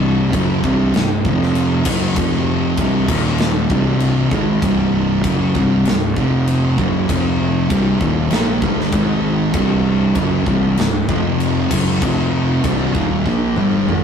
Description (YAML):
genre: stoner and doom metal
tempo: 98 BPM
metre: 4/4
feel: straight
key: C minor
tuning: A4 = 440 Hz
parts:
  - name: thick fuzz guitar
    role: riff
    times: 0.0-14.0 s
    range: C2 to Bb3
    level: -19 LUFS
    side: left 5 dB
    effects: distortion
  - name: thick fuzz guitar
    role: riff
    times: 0.0-14.0 s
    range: C2 to Bb3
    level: -19 LUFS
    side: right 5 dB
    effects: distortion
  - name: fuzz fingered electric bass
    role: bass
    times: 0.0-14.0 s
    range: C1 to Bb1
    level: -24 LUFS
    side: equal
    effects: overdrive
  - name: big rock drum kit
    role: drums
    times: 0.3-14.0 s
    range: crash cymbal, kick drum, snare drum, toms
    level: -21 LUFS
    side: equal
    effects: none
room: moderate studio reverb, RT60 0.5 s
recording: rough rehearsal-room recording, tube saturation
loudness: -14 LUFS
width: side -7 dB against mid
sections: 0.0-14.0 A section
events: drum fill 13.3-14.0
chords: 0.0 C5; 1.3 F5; 1.9 F#5; 2.2 F5; 2.8 C5; 3.1 Eb5; 3.7 Cm; 6.2 F5; 6.8 F#5; 7.1 F5; 7.7 Cm; 8.9 Ab5; 9.6 C5; 11.1 F5; 11.7 F#5; 12.0 F5; 12.6 Cm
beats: 0.34 0.95 1.56 | 2.18 2.79 3.40 4.02 | 4.63 5.25 5.86 6.48 | 7.09 7.71 8.32 8.94 | 9.55 10.17 10.79 11.40 | 12.02 12.64 13.26 13.87